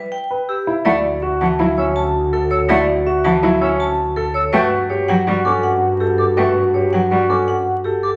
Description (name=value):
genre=classical, minimalist pattern music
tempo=163 BPM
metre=5/4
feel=straight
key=unclear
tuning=A4 = 441 Hz
part: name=vibraphone with medium hard mallets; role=melody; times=0.0-8.2 s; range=G4 to A5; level=-24 LUFS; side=equal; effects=none
part: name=clear concert grand piano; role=arpeggios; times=0.3-8.1 s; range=C#4 to B4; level=-23 LUFS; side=equal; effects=none
part: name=silver concert flute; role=arpeggios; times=0.5-8.1 s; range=F#5 to E6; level=-27 LUFS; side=equal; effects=none
part: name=mellow French horn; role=second line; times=0.9-8.0 s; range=F#4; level=-23 LUFS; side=equal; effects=none
part: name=rich cello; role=accompaniment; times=0.9-7.3 s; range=E3 to A3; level=-23 LUFS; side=equal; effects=none
part: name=clear double bass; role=bass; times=0.9-8.1 s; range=D2 to G2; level=-27 LUFS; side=equal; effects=none
room=wet large studio reverb, RT60 1.2 s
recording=vinyl crackle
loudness=-17 LUFS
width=mono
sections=0.9-8.2 A section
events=none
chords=0.0 Em; 0.9 Dmaj7; 4.5 Gmaj7sus2